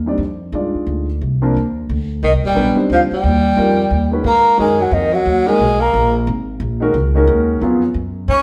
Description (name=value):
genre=modal jazz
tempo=178 BPM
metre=3/4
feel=swing 64% on 8ths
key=G# dorian from 4.2 s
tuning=A4 = 440 Hz
part: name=upright bass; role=bass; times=0.0-8.4 s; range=Eb1 to G#2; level=-21 LUFS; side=equal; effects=none
part: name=warm grand piano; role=accompaniment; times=0.1-7.8 s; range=C#3 to D5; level=-21 LUFS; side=equal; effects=none
part: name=growling tenor saxophone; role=second line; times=2.2-6.1, 8.3-8.4 s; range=Eb3 to C#4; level=-20 LUFS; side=equal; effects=none
part: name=breathy mellow concert flute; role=melody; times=2.3-6.1, 8.3-8.4 s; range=D#5 to C#6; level=-20 LUFS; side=equal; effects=none
room=wet stone room reverb, RT60 1.2 s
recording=band playing live in one room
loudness=-16 LUFS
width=mono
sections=0.0-4.2 A section; 4.2-8.4 B section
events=none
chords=0.2 Cmadd9; 3.2 Eb7; 4.2 G#m7; 6.3 D#madd9/G#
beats=| 0.20 0.54 0.88 | 1.21 1.55 1.89 | 2.23 2.56 2.90 | 3.24 3.57 3.91 | 4.25 4.58 4.92 | 5.26 5.59 5.93 | 6.26 6.60 6.94 | 7.27 7.61 7.95 | 8.28